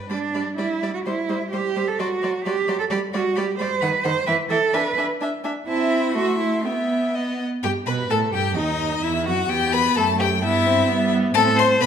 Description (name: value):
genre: quick classical-period movement for string quartet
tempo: 129 BPM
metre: 2/4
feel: rubato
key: G major, E minor from 3.8 s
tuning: A4 = 440 Hz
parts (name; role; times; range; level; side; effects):
- clear violin; second line; 0.0-11.9 s; D#4 to F#5; -25 LUFS; left 3 dB; none
- warm cello; bass; 0.0-11.9 s; D#2 to C5; -23 LUFS; right 4 dB; none
- clear violin; melody; 0.1-11.9 s; D#5 to C6; -26 LUFS; left 10 dB; none
- rich viola; accompaniment; 0.1-11.9 s; D#3 to B4; -26 LUFS; right 2 dB; none
room: wet recital hall reverb, RT60 1.5 s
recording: none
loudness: -19 LUFS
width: side -8 dB against mid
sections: 0.1-7.6 A section; 7.6-11.9 B section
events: none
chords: 0.1 G; 1.1 C/G; 2.0 D7/F#; 2.9 G; 3.8 B/D#; 4.3 N.C.; 4.7 E7/D; 5.7 Am/C; 6.2 Am; 6.6 Em/B; 7.6 Gadd9; 8.6 D#m; 9.5 E5; 10.4 Em/G; 11.4 Am